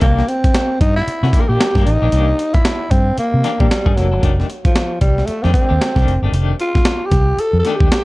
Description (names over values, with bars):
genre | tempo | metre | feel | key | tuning
funk | 114 BPM | 4/4 | swing 60% on 16ths | C mixolydian | A4 = 439 Hz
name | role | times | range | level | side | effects
growling tenor saxophone | melody | 0.0-8.0 s | F3 to Bb4 | -19 LUFS | equal | analog delay
clean electric guitar | accompaniment | 0.0-7.9 s | Eb3 to A4 | -24 LUFS | left 5 dB | tremolo
vintage muted fingered electric bass | bass | 0.0-7.9 s | F1 to C3 | -16 LUFS | equal | none
breakbeat sampler-style drum kit | drums | 0.0-8.0 s | hi-hat, kick drum, snare drum | -16 LUFS | equal | none
room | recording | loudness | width
light reverb | dark, warm production | -13 LUFS | side -20 dB against mid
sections
0.0-8.0 A section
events
tenor saxophone solo 0.0-8.0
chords
0.0 C9; 4.2 F13